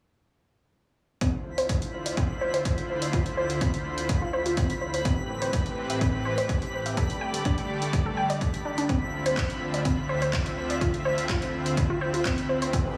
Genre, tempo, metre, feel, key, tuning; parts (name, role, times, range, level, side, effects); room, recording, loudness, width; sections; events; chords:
progressive house; 125 BPM; 4/4; straight; D dorian; A4 = 439 Hz
supersaw pad; sustained chords; 1.2-13.0 s; D2 to E5; -33 LUFS; equal; sidechain pumping
glassy wavetable pluck; arpeggios; 1.2-12.8 s; C4 to D6; -32 LUFS; equal; chorus, sidechain pumping, tape echo
electronic kick drum; drums; 1.2-12.8 s; -31 LUFS; equal; overdrive, small room ambience
house drum kit; drums; 1.2-12.8 s; handclaps, hi-hat; -38 LUFS; equal; small room ambience
twinkling granular texture; texture; 1.5-13.0 s; B5; -41 LUFS; equal; built-in reverb, sidechain pumping
riser; sound effects; 12.8-13.0 s; -41 LUFS; equal
light reverb; small room ambience; -27 LUFS; mono
1.2-13.0 A section
filter sweep on synth arpeggio sound 1.2-13.0; riser 12.8
1.2 Dm7; 5.1 Am7; 7.0 Gsus2; 8.9 Dm7